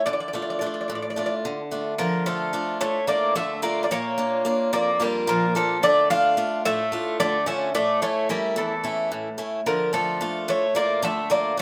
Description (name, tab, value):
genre	greek folk, Greek bouzouki band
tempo	219 BPM (eighths)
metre	7/8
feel	straight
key	D harmonic minor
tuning	A4 = 441 Hz
part	Greek bouzouki	melody	0.0-11.6 s	A4 to F5	-26 LUFS	equal	none
part	picked swing-style acoustic guitar	accompaniment	0.0-11.6 s	E2 to F4	-30 LUFS	equal	none
part	Greek bouzouki	second line	2.0-11.6 s	E3 to D4	-31 LUFS	equal	none
room	light reverb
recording	none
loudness	-24 LUFS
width	mono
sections	0.0-2.0 A section; 2.0-11.6 B section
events	none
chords	0.1 Dm; 3.9 Bb; 5.8 Dm; 7.7 A; 9.7 Dm